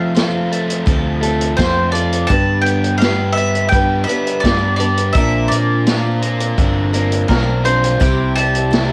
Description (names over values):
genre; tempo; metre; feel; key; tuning
folk rock and heartland rock; 84 BPM; 4/4; straight; unclear; A4 = 438 Hz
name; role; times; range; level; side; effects
bowl-back mandolin; melody; 0.0-8.9 s; Bb4 to A5; -22 LUFS; equal; cassette tape
picked steel-string acoustic guitar; accompaniment; 0.0-8.9 s; G2 to B4; -24 LUFS; equal; cassette tape, plate reverb
overdriven electric guitar; riff; 0.0-8.9 s; F2 to G4; -25 LUFS; equal; cassette tape
picked electric bass; bass; 0.0-8.9 s; G1 to F3; -21 LUFS; equal; none
vintage drum kit; drums; 0.2-8.9 s; hi-hat, kick drum, snare drum; -20 LUFS; equal; cassette tape
room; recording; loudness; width
light reverb; home recording on cassette; -16 LUFS; mono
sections
0.0-8.9 A section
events
none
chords
0.0 F; 2.3 G; 5.1 Bbadd9; 8.0 C